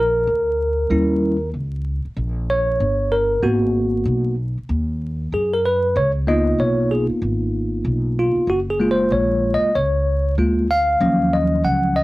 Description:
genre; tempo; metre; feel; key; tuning
hip hop; 95 BPM; 4/4; swing 62% on 16ths; Eb minor; A4 = 440 Hz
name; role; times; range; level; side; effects
bell-like tine electric piano; accompaniment; 0.0-12.0 s; F3 to Gb5; -18 LUFS; equal; fast stereo tremolo
upright bass; bass; 0.0-12.0 s; Gb1 to Gb2; -22 LUFS; equal; none
room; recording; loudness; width
light reverb; home recording on cassette, vinyl crackle; -17 LUFS; side -19 dB against mid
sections
0.0-12.0 A section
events
tine electric piano solo 0.0-12.0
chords
0.0 N.C.; 0.9 Eb7b9; 3.4 Abm7; 6.0 Db13; 8.5 Gbmaj7; 11.0 Ebm7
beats
0.27 | 0.91 1.54 2.17 2.80 | 3.43 4.06 4.69 5.33 | 5.96 6.59 7.22 7.85 | 8.48 9.12 9.75 10.38 | 11.01 11.64

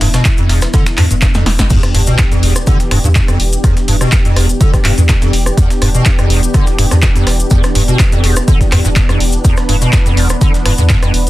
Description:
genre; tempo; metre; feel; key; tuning
acid house; 124 BPM; 4/4; swing 53% on 16ths; E phrygian; A4 = 440 Hz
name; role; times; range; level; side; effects
warm analog pad; sustained chords; 0.0-11.3 s; E3 to B4; -20 LUFS; equal; chorus, sidechain pumping
liquid acid bass; riff; 0.0-11.1 s; E2 to D3; -15 LUFS; equal; overdrive, ensemble chorus
warm sub bass; bass; 0.0-11.3 s; E1 to E2; -14 LUFS; equal; sidechain pumping
dusty soul sampler-style drum kit; drums; 0.0-11.3 s; hi-hat, snare drum, tambourine; -28 LUFS; right 1 dB; none
punchy analog drum machine; drums; 0.0-11.3 s; crash cymbal, finger snaps, handclaps, hi-hat, rim click, snare drum; -18 LUFS; equal; none
cabasa; percussion; 0.1-11.3 s; none; -26 LUFS; left 3 dB; none
electronic kick drum; drums; 0.3-11.0 s; none; -12 LUFS; equal; none
sub drop; sound effects; 1.7-3.6 s; none; -22 LUFS; equal; none
room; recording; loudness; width
light reverb; dense, heavily limited modern master; -9 LUFS; side -16 dB against mid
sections
0.0-1.7 A section; 1.7-11.3 B section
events
drum fill 1.3-1.7; band accent 1.6; drop 1.7-11.3; impact 1.7-3.6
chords
0.0 Em7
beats
0.25 0.74 1.22 | 1.70 2.19 2.67 3.15 | 3.64 4.12 4.61 5.09 | 5.58 6.06 6.54 7.03 | 7.51 7.99 8.48 8.96 | 9.45 9.93 10.41 10.90

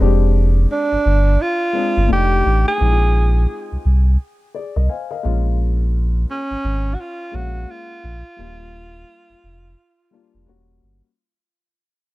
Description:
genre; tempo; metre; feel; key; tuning
hip hop; 86 BPM; 4/4; swing 61% on 16ths; F dorian; A4 = 436 Hz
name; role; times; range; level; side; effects
dark concert grand piano; accompaniment; 0.0-11.1 s; G3 to Ab5; -25 LUFS; left 8 dB; none
sub bass with octave; bass; 0.0-11.0 s; Eb1 to C2; -16 LUFS; equal; none
breathy tenor saxophone; melody; 0.7-10.5 s; Db4 to Ab4; -21 LUFS; right 2 dB; analog delay
room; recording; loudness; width
little or no reverb; dark, warm production; -15 LUFS; side -18 dB against mid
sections
0.0-11.2 A section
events
fade-out 0.0-11.2; grand piano fill 4.5-5.6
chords
0.0 Fm69; 2.1 F13; 2.8 Bb7sus4; 5.2 Absus4; 8.4 Ebmaj9; 10.5 Edim7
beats
| 0.01 0.71 1.40 2.10 | 2.80 3.50 4.20 4.89 | 5.59 6.29 6.99 7.68 | 8.38 9.08 9.78 10.47

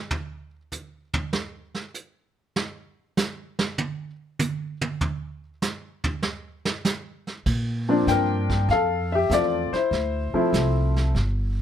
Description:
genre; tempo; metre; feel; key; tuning
jazz piano trio; 98 BPM; 4/4; swing 68% on 8ths; unclear; A4 = 440 Hz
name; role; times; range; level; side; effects
vintage brush drum kit; drums; 0.1-11.6 s; brushed snare drum, crash cymbal, hi-hat, kick drum, snare drum, toms; -27 LUFS; right 3 dB; none
upright bass; bass; 7.5-11.6 s; G1 to Bb2; -24 LUFS; equal; none
warm upright piano; melody; 7.9-11.1 s; F3 to G5; -22 LUFS; left 3 dB; none
room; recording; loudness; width
light reverb; none; -23 LUFS; side -9 dB against mid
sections
0.0-7.5 A section; 7.5-11.6 B section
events
drum solo 0.0-7.5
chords
0.1 N.C.; 7.5 Bbmaj9; 9.9 Dm9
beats
| 0.11 0.72 1.33 1.95 | 2.56 3.17 3.78 4.40 | 5.01 5.62 6.24 6.85 | 7.46 8.08 8.69 9.31 | 9.92 10.54 11.15

